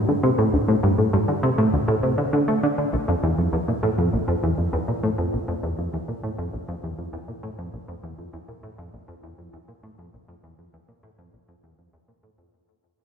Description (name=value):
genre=ambient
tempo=100 BPM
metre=4/4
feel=straight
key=unclear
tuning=A4 = 442 Hz
part: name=plucky analog bass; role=solo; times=0.1-12.5 s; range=Bb1 to A3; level=-21 LUFS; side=equal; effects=wide subtle chorus, ping-pong delay
room=wet echo chamber reverb, RT60 2.4 s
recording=echo-heavy mix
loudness=-20 LUFS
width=side -7 dB against mid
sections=0.0-12.5 A section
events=fade-out 0.0-12.5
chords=none